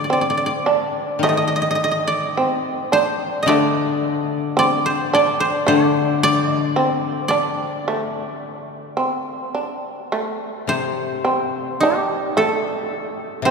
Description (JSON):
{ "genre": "japanese traditional, Japanese chamber music", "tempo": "54 BPM", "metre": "2/4", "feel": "uneven beats, rubato", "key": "D in sen", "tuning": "A4 = 440 Hz", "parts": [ { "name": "koto", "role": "melody", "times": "0.0-13.5 s", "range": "G4 to Eb5", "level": "-22 LUFS", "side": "right 1 dB", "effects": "none" }, { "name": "shamisen", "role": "second line", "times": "0.0-13.5 s", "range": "A3 to D4", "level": "-21 LUFS", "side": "right 2 dB", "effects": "none" }, { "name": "koto", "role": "accompaniment", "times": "0.0-13.5 s", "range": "C3 to Eb3", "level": "-23 LUFS", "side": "left 5 dB", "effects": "none" } ], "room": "wet cathedral reverb, RT60 4.6 s", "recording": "recorded in a church or concert hall", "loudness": "-17 LUFS", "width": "side -5 dB against mid", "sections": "0.0-10.1 A section; 10.1-13.5 B section", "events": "none", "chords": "none" }